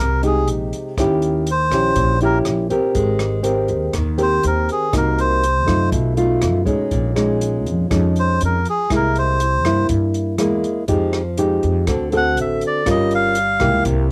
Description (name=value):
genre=bossa nova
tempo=121 BPM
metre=4/4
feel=straight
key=F minor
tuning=A4 = 440 Hz
part: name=melodica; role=melody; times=0.0-13.8 s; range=Ab4 to F#5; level=-21 LUFS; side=equal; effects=cassette tape
part: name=nylon-string guitar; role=accompaniment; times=0.0-14.1 s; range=Bb2 to Bb4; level=-22 LUFS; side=equal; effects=cassette tape
part: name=upright bass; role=bass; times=0.0-14.1 s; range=G1 to G2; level=-23 LUFS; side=equal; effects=none
part: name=open jazz drum kit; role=drums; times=0.2-14.0 s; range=hi-hat, kick drum, rim click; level=-28 LUFS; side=equal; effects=none
room=moderate studio reverb, RT60 0.5 s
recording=home recording on cassette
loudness=-18 LUFS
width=mono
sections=0.0-14.1 A section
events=melodica solo 0.0-14.1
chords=0.0 Fm9 (rootless); 1.0 Eb7b9; 3.0 Abmaj9; 4.9 Cm7b5; 5.9 B7#11; 6.9 Bbm7; 8.9 C7b13; 10.9 Fm9; 11.9 D7; 12.9 Gm7b5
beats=0.48 | 0.98 1.47 1.97 2.46 | 2.96 3.46 3.95 4.45 | 4.94 5.44 5.93 6.43 | 6.93 7.42 7.92 8.41 | 8.91 9.40 9.90 10.39 | 10.89 11.39 11.88 12.38 | 12.87 13.37 13.87